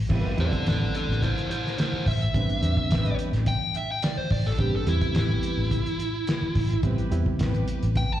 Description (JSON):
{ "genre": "straight-eighth soul blues", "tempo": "107 BPM", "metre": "4/4", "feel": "straight", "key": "A minor", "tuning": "A4 = 440 Hz", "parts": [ { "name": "vintage muted fingered electric bass", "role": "bass", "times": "0.0-8.0 s", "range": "A1 to E2", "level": "-25 LUFS", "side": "equal", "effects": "none" }, { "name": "bright reed electric piano", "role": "accompaniment", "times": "0.1-8.0 s", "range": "G3 to G4", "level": "-32 LUFS", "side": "right 4 dB", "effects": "fast tremolo, plate reverb, slapback echo" }, { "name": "dark studio string section", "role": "sustained chords", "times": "0.1-8.0 s", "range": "C4 to B4", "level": "-39 LUFS", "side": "left 3 dB", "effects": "plate reverb" }, { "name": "cloth-damped thuddy drum kit", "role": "drums", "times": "0.1-8.1 s", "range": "crash cymbal, hi-hat, kick drum, snare drum", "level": "-29 LUFS", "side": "equal", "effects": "none" }, { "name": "dark smooth lead guitar", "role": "melody", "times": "0.4-8.2 s", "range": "E4 to A5", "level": "-29 LUFS", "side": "equal", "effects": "overdrive, plate reverb, slapback echo" } ], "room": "little or no reverb", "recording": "live gig heard through the venue's PA, recital hall reverb", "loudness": "-23 LUFS", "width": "side -12 dB against mid", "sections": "0.1-8.2 A section", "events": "lead electric guitar solo 0.1-8.2", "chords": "0.1 Am9" }